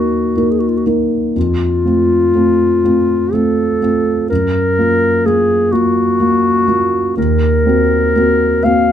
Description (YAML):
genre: classical, romantic duo for clarinet and grand piano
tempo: 61 BPM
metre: 3/4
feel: rubato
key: unclear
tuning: A4 = 440 Hz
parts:
  - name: mellow clarinet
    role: melody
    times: 0.0-8.9 s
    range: F4 to F5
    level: -14 LUFS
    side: left 1 dB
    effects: none
  - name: dark grand piano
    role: accompaniment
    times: 0.0-8.9 s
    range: Eb2 to Bb4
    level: -14 LUFS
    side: equal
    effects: none
room: light reverb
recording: dark, warm production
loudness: -11 LUFS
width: side -9 dB against mid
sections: 0.0-8.9 A section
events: none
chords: 0.0 Ebm; 1.4 F; 4.3 Gbmaj7; 7.2 Cm7b5/Eb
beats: 0.36 | 1.36 2.34 3.33 | 4.30 5.26 6.20 | 7.17 8.16